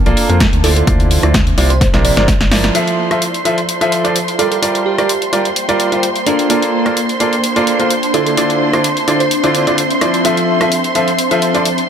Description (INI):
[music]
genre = piano house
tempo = 128 BPM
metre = 4/4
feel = swing 53% on 16ths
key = F major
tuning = A4 = 440 Hz
[part]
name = ethereal airy pad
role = texture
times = 0.0-11.9 s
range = Bb3 to C6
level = -20 LUFS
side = equal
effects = ensemble chorus, built-in reverb, sidechain pumping
[part]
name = clear upright piano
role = riff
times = 0.1-11.7 s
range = C3 to E5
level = -16 LUFS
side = right 1 dB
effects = sidechain pumping, low-pass filter, dub echo
[part]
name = organ-like FM bass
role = bass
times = 0.1-2.7 s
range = G1 to F2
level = -15 LUFS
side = equal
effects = sidechain pumping
[part]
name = house drum kit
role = drums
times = 0.1-11.9 s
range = hi-hat, rim click, snare drum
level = -19 LUFS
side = left 1 dB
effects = none
[part]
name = electronic kick drum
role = drums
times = 0.4-2.4 s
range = none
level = -15 LUFS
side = equal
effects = none
[part]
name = bell-like FM electric piano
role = melody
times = 0.6-9.7 s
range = D4 to D5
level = -22 LUFS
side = right 3 dB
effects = chorus, phaser, dub echo
[part]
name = warm symphonic violin section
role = sustained chords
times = 2.7-11.9 s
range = C5 to C6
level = -20 LUFS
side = right 1 dB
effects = sidechain pumping, low-pass filter
[sound]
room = moderate lush hall reverb, RT60 2.3 s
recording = none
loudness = -11 LUFS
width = side -8 dB against mid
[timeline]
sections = 0.0-2.7 A section; 2.7-11.9 B section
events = drum fill 1.8-2.7; band accent 2.6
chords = 0.0 Bbmaj7; 0.6 Dm9; 1.8 C9; 2.7 Fmaj7; 4.4 Gm7; 6.3 Bbmaj7; 8.1 Dm9; 10.2 Fmaj7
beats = 0.41 | 0.87 1.34 1.81 2.28 | 2.75 3.22 3.69 4.16 | 4.62 5.09 5.56 6.03 | 6.50 6.97 7.44 7.91 | 8.37 8.84 9.31 9.78 | 10.25 10.72 11.19 11.65